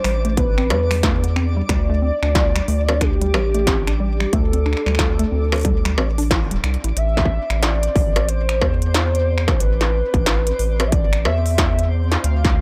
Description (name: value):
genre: IDM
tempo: 91 BPM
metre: 4/4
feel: swing 62% on 16ths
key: A minor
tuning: A4 = 440 Hz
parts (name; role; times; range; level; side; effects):
- warbly nostalgic lead; melody; 0.0-12.6 s; G4 to F5; -27 LUFS; equal; analog chorus, analog delay
- warbly dusty pluck; arpeggios; 0.0-6.9 s; G3 to E4; -29 LUFS; equal; chorus, tape echo
- round analog bass; bass; 0.0-12.6 s; D1 to E2; -22 LUFS; equal; none
- industrial drum kit; drums; 0.0-12.5 s; finger snaps, hi-hat, snare drum, struck metal; -26 LUFS; equal; none
- twinkling granular texture; texture; 0.0-12.6 s; C4 to D5; -37 LUFS; equal; built-in reverb, sidechain pumping
- electronic kick drum; drums; 0.4-12.5 s; none; -22 LUFS; equal; distortion
room: little or no reverb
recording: dry, gritty hardware recording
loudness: -19 LUFS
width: mono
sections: 0.0-7.0 A section; 7.0-12.6 B section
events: band accent 6.3-6.6; drum fill 6.6-7.0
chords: 0.0 Am11; 1.7 Dsus4; 7.0 Amadd9